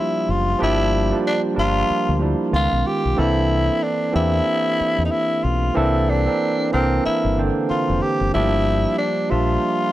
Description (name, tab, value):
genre	R&B, neo-soul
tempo	93 BPM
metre	4/4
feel	swing 58% on 16ths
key	unclear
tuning	A4 = 440 Hz
part	growling tenor saxophone	melody	0.0-9.9 s	C4 to G4	-21 LUFS	left 1 dB	none
part	barky tine electric piano	accompaniment	0.0-9.9 s	D3 to E5	-22 LUFS	right 3 dB	overdrive
part	deep dub fingered electric bass	bass	0.3-9.6 s	F1 to E2	-22 LUFS	left 1 dB	none
room	little or no reverb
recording	dry, close 1970s-style studio recording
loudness	-17 LUFS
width	side -14 dB against mid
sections	0.0-9.9 A section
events	none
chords	0.0 Gm7; 2.5 C#9; 3.2 C13; 8.3 Gm7